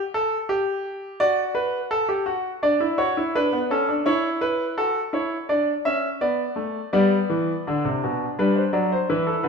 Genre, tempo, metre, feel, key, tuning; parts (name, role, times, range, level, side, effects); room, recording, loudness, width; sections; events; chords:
classical, baroque-style 3-part fugue for grand piano; 84 BPM; 4/4; straight; G major; A4 = 440 Hz
clear concert grand piano; solo; 0.1-9.5 s; B2 to E5; -21 LUFS; equal
wet stone room reverb, RT60 1.4 s; heard from further back in the room; -21 LUFS; side -5 dB against mid
0.0-6.9 A section; 6.9-9.5 B section
0.0 N.C.; 1.2 D/F#; 2.6 D; 4.1 A/E; 5.5 D5; 6.9 G